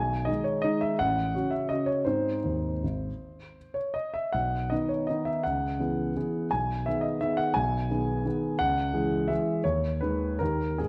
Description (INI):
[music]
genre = classical, piano waltz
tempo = 149-181 BPM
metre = 3/4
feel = rubato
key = G# minor from 4.3 s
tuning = A4 = 441 Hz
[part]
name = warm concert grand piano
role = solo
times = 0.0-10.9 s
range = G#1 to G#5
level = -28 LUFS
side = equal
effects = none
[sound]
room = moderate recital hall reverb, RT60 1.6 s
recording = dark, warm production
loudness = -28 LUFS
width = mono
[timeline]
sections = 0.0-10.9 A section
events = none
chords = 0.0 G#m/B; 1.0 F#m/A; 2.1 G#; 4.3 B; 5.5 C#m7; 6.5 G#m/B; 8.6 C#m; 9.7 G#m/D#; 10.4 D#